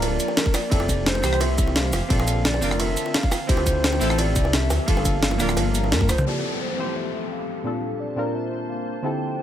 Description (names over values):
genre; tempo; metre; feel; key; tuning
liquid drum and bass; 173 BPM; 4/4; straight; F major; A4 = 437 Hz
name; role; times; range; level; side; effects
hollow clarinet-like synth lead; melody; 0.0-9.4 s; Bb4 to G5; -30 LUFS; equal; chorus, ping-pong delay
deep mellow chord stab; accompaniment; 0.0-9.4 s; Bb2 to C5; -28 LUFS; equal; chorus, digital delay
glassy FM pad; sustained chords; 0.0-9.4 s; D3 to A5; -32 LUFS; left 3 dB; ensemble chorus, built-in reverb, sidechain pumping
swelling detuned saw bass; bass; 0.0-6.2 s; D1 to G2; -24 LUFS; equal; none
jungle sampler-style drum kit; drums; 0.0-6.2 s; cabasa, hi-hat, ride cymbal, rim click, snare drum, toms; -25 LUFS; equal; low-pass filter on hats, low-pass filter on perc, low-pass filter on snare, low-pass filter on cymbals, low-pass filter on toms, low-pass filter on room
bongos; percussion; 0.0-6.2 s; none; -32 LUFS; right 2 dB; none
electronic kick drum; drums; 0.5-6.1 s; none; -22 LUFS; equal; none
downlifter; sound effects; 6.3-9.0 s; none; -33 LUFS; left 2 dB; none
room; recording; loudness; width
light reverb; none; -20 LUFS; side -10 dB against mid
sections
0.0-6.3 A section; 6.3-9.4 B section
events
drop 0.0-6.3; drum fill 5.9-6.3; band accent 5.9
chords
0.0 Gm9 (rootless); 0.7 Fmaj9; 2.1 Bbmaj9; 3.5 Dm11; 4.9 Gm9; 6.3 Fmaj9; 7.7 Bbmaj9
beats
0.02 0.37 | 0.71 1.06 1.41 1.76 | 2.10 2.45 2.80 3.14 | 3.49 3.84 4.18 4.53 | 4.88 5.22 5.57 5.92 | 6.26 6.61 6.96 7.30 | 7.65 8.00 8.35 8.69 | 9.04 9.39